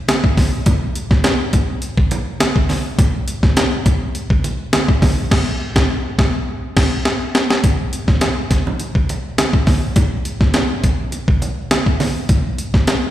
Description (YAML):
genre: funk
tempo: 103 BPM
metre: 4/4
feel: straight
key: none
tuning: none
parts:
  - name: breakbeat sampler-style drum kit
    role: drums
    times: 0.1-13.0 s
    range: crash cymbal, hi-hat, kick drum, snare drum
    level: -15 LUFS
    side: equal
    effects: none
  - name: congas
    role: percussion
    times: 0.1-13.0 s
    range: none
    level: -25 LUFS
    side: right 4 dB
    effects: slapback echo
room: light reverb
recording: live gig heard through the venue's PA, recital hall reverb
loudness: -15 LUFS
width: side -13 dB against mid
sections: 0.0-7.6 A section; 7.6-13.1 B section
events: band accent 5.3-7.6; drum fill 6.5-7.6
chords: none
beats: 0.08 | 0.66 1.25 1.83 2.41 | 2.99 3.57 4.15 4.73 | 5.31 5.89 6.47 7.05 | 7.64 8.22 8.80 9.38 | 9.96 10.55 11.13 11.71 | 12.30 12.88